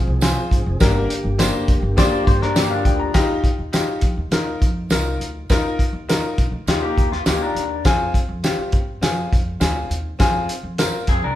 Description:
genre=uptempo 1960s-style soul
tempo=102 BPM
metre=4/4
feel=straight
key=unclear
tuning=A4 = 440 Hz
part: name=tonewheel organ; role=sustained chords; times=0.0-3.1 s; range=D3 to Ab4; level=-27 LUFS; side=equal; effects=slow rotary speaker, overdrive
part: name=upright bass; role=bass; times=0.0-11.3 s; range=F1 to G2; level=-25 LUFS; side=equal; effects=none
part: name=bright baby grand piano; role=accompaniment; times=0.2-11.1 s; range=Bb3 to Bb5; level=-24 LUFS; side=left 3 dB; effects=none
part: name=cloth-damped thuddy drum kit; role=drums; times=0.2-11.2 s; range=hi-hat, kick drum, snare drum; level=-19 LUFS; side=equal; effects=none
part: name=tambourine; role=percussion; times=0.2-10.9 s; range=none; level=-32 LUFS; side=right 5 dB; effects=none
part: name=electric guitar through a small old amp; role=riff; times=2.0-3.1, 6.7-11.4 s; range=F3 to D5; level=-24 LUFS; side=left 4 dB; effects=none
room=moderate large studio reverb, RT60 1.1 s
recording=band playing live in one room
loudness=-17 LUFS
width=side -13 dB against mid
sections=0.0-3.1 A section; 3.1-11.4 B section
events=none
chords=0.0 Fm; 0.8 Gm; 3.1 Ebadd9; 7.9 Fm

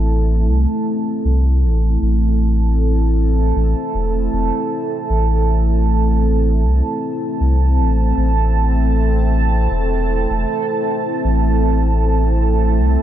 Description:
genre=ambient dub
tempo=78 BPM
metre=4/4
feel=swing 55% on 16ths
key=A minor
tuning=A4 = 438 Hz
part: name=deep dark ambient pad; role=sustained chords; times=0.0-13.0 s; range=A3 to A5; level=-19 LUFS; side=right 2 dB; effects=chorus, built-in reverb
part: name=warm sub bass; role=bass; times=0.0-13.0 s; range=E1 to C2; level=-15 LUFS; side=equal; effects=none
room=light reverb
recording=none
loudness=-14 LUFS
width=side -11 dB against mid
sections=0.0-13.0 A section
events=none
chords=0.0 Am

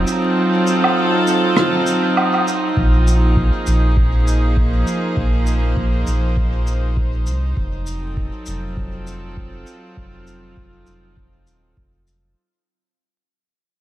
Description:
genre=ambient dub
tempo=100 BPM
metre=4/4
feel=swing 57% on 16ths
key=unclear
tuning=A4 = 440 Hz
part: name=rich chamber string section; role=sustained chords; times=0.0-12.4 s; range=F3 to C5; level=-19 LUFS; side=right 1 dB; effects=none
part: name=soft dub sub bass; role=bass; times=0.0-12.3 s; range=Eb1 to C2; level=-17 LUFS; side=equal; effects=tube saturation
part: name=shaker, woodblock and rim click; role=drums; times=0.1-12.2 s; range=none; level=-23 LUFS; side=equal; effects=dub echo
part: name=electronic kick drum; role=drums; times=2.8-11.9 s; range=none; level=-22 LUFS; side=equal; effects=overdrive
room=light reverb, studio ambience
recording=vinyl crackle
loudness=-15 LUFS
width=side -13 dB against mid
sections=0.0-2.8 A section; 2.8-12.4 B section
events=fade-out 2.8-12.4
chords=0.0 F7b9; 2.8 Bb5; 7.6 F7b9

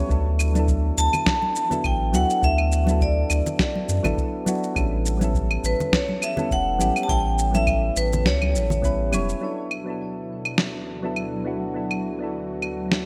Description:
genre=sunset chillout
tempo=103 BPM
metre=4/4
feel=swing 55% on 16ths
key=D major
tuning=A4 = 444 Hz
part: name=soft electric-piano-like synth keys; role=accompaniment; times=0.0-13.1 s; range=F#3 to C#5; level=-30 LUFS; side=equal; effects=chorus, low-pass filter, digital delay
part: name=warm sub bass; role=bass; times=0.0-9.3 s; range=E1 to F#2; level=-25 LUFS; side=equal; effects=none
part: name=electronic kick drum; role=drums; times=0.1-9.0 s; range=none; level=-28 LUFS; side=equal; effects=none
part: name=electronic shaker, claves and snare drum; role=drums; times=0.1-13.0 s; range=none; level=-28 LUFS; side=equal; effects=overdrive, gated reverb
part: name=congas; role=percussion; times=0.6-9.3 s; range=none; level=-32 LUFS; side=equal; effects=none
part: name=vibraphone with hard mallets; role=melody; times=1.0-9.1 s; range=B4 to A5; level=-27 LUFS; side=equal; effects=delay
part: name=ethereal airy pad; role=sustained chords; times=9.9-13.1 s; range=D2 to F#3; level=-35 LUFS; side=equal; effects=ensemble chorus, built-in reverb, phaser, vintage 12-bit sampler grit
room=moderate lush hall reverb, RT60 2.2 s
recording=bright 1980s-style digital production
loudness=-23 LUFS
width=mono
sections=0.0-9.4 A section; 9.4-13.1 B section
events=none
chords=0.1 D6; 4.8 A7; 9.4 D6

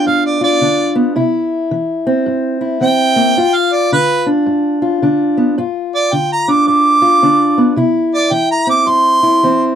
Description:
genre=acoustic country blues, solo or duo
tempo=109 BPM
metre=4/4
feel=swing 63% on 8ths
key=G mixolydian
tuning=A4 = 440 Hz
part: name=warm harmonica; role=melody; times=0.0-9.8 s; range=B4 to D6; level=-12 LUFS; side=right 3 dB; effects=none
part: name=fingerpicked steel-string acoustic guitar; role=accompaniment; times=0.0-9.8 s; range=G2 to F4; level=-14 LUFS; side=left 1 dB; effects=none
room=light reverb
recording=dry, close 1970s-style studio recording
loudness=-11 LUFS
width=side -9 dB against mid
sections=0.0-9.8 A section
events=harmonica solo 0.0-9.8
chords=0.0 G7; 1.2 C; 3.4 G7(no3); 7.8 C

